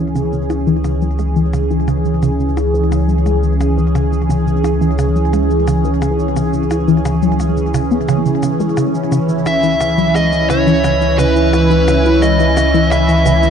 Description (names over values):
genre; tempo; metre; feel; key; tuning
ambient, sequencer-driven space music; 87 BPM; 4/4; straight; C# minor; A4 = 440 Hz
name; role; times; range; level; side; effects
phased analog pad; sustained chords; 0.0-13.5 s; E3 to G#4; -16 LUFS; right 1 dB; phaser, chorus
tight sequenced synth; riff; 0.0-13.5 s; C#3 to E4; -19 LUFS; left 2 dB; chorus, phaser, ping-pong delay
round analog bass; bass; 0.0-13.5 s; C#2; -18 LUFS; equal; none
cabasa and percussion blips; percussion; 0.2-13.5 s; none; -31 LUFS; left 4 dB; ping-pong delay
fuzz lead guitar; melody; 9.5-13.5 s; B4 to E5; -15 LUFS; equal; distortion, ping-pong delay
room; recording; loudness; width
wet huge ambient reverb, RT60 8.9 s; cassette tape; -12 LUFS; side -7 dB against mid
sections
0.0-13.5 A section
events
fade-in on drum 0.0-13.5; filter sweep on synth arpeggio sound 0.0-13.5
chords
0.0 C#m